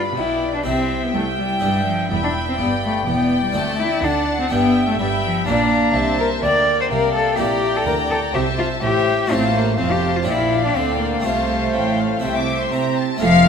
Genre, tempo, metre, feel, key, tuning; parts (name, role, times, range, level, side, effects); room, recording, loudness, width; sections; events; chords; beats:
classical, baroque-style concerto movement with solo episodes; 124 BPM; 4/4; straight; A4 = 440 Hz
rich chamber violin section; melody; 0.0-13.5 s; F5 to D6; -28 LUFS; left 6 dB
rich studio violin section; second line; 0.0-13.5 s; D5 to G5; -24 LUFS; left 3 dB
harpsichord; accompaniment; 0.0-13.5 s; C2 to F4; -26 LUFS; equal
rich chamber viola section; accompaniment; 0.0-13.5 s; A3 to E5; -28 LUFS; right 3 dB
rich chamber cello section; bass; 0.0-13.5 s; C2 to C4; -26 LUFS; right 5 dB
rich chamber double bass section; bass; 0.0-13.5 s; E1 to C3; -27 LUFS; right 4 dB
rich cello; melody; 0.2-13.5 s; F3 to D5; -20 LUFS; left 2 dB
moderate scoring stage reverb, RT60 1.8 s; -17 LUFS; side -6 dB against mid
0.0-13.2 A section
0.0 G7; 0.7 C; 1.6 G; 3.6 D7; 4.5 G; 5.5 Gm7/Bb; 7.4 C7/Bb; 9.3 F/A; 10.3 Gm7/Bb; 11.2 F/C; 12.2 C
0.18 0.66 1.15 | 1.63 2.11 2.59 3.08 | 3.56 4.04 4.52 5.00 | 5.48 5.96 6.44 6.92 | 7.39 7.87 8.35 8.83 | 9.31 9.79 10.27 10.76 | 11.25 11.74 12.23 12.72 | 13.21